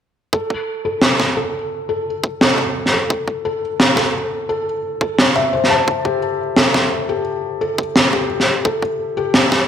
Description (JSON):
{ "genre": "half-time drum and bass", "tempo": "173 BPM", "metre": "4/4", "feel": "swing 60% on 16ths, half-time", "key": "A minor", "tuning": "A4 = 444 Hz", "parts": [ { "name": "felt-muted upright piano", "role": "arpeggios", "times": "0.3-9.7 s", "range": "G4 to A5", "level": "-20 LUFS", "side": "left 2 dB", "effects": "low-pass filter, ping-pong delay" }, { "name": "electronic kick drum", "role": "drums", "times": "0.3-9.6 s", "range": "none", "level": "-21 LUFS", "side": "right 1 dB", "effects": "high-pass filter on kick" }, { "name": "snare drum", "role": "drums", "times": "1.0-9.6 s", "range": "none", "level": "-14 LUFS", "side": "equal", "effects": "gated reverb" } ], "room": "moderate lush hall reverb, RT60 2.1 s", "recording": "bright 1980s-style digital production", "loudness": "-15 LUFS", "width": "side -8 dB against mid", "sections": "0.3-9.7 A section", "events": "filter sweep on felt piano 0.3-9.7", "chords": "none" }